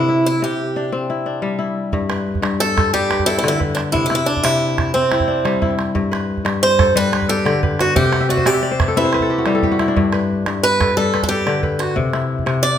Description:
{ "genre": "west african traditional, West African string and xylophone music", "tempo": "120 BPM (dotted quarters)", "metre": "12/8", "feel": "straight", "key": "G major", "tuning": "A4 = 439 Hz", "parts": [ { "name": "picked swing-style acoustic guitar", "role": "melody", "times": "0.0-12.8 s", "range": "C4 to D5", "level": "-18 LUFS", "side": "right 2 dB", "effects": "none" }, { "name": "kora", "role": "arpeggios", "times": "0.0-12.8 s", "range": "G2 to G5", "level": "-19 LUFS", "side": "left 3 dB", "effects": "none" }, { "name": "calabash", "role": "percussion", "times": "1.9-12.8 s", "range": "none", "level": "-23 LUFS", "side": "right 3 dB", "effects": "none" } ], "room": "wet recital hall reverb, RT60 1.5 s", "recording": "minimal, uncompressed stereo recording", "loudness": "-15 LUFS", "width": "side -9 dB against mid", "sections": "0.0-1.9 A section; 1.9-12.8 A section", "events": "kora fill 8.0-10.0", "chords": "0.0 C; 1.9 G; 3.9 C; 5.9 G; 8.0 C; 10.0 G; 12.0 C" }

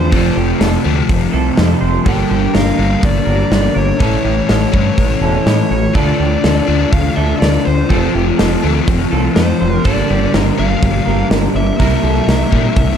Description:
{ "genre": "rock, shoegaze and dream pop", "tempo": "123 BPM", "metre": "4/4", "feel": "straight", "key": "unclear", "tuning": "A4 = 436 Hz", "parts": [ { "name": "fuzz lead guitar", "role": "melody", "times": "0.0-13.0 s", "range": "C5 to G5", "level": "-22 LUFS", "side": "left 1 dB", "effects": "distortion, tape echo" }, { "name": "twangy electric guitar", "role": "arpeggios", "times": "0.0-12.8 s", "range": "G4 to D5", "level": "-26 LUFS", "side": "right 3 dB", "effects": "analog chorus, tape echo" }, { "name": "crunchy overdriven guitar", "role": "riff", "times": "0.0-13.0 s", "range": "F2 to F4", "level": "-17 LUFS", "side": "left 8 dB", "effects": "analog chorus" }, { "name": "crunchy overdriven guitar", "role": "riff", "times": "0.0-13.0 s", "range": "F2 to F4", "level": "-20 LUFS", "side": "right 15 dB", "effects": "reverse reverb" }, { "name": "growling fingered electric bass", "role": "bass", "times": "0.0-12.9 s", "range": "E1 to Bb2", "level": "-17 LUFS", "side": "equal", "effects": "overdrive" }, { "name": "big rock drum kit", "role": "drums", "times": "0.1-12.9 s", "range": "hi-hat, kick drum, snare drum", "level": "-18 LUFS", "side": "equal", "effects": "none" } ], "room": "studio reverb", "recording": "dark, warm production", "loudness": "-11 LUFS", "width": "side -8 dB against mid", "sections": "0.0-13.0 A section", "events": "none", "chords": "0.1 F; 2.1 Gm7; 4.0 A; 6.0 Dm; 7.9 F; 9.8 Gm7; 11.8 C7" }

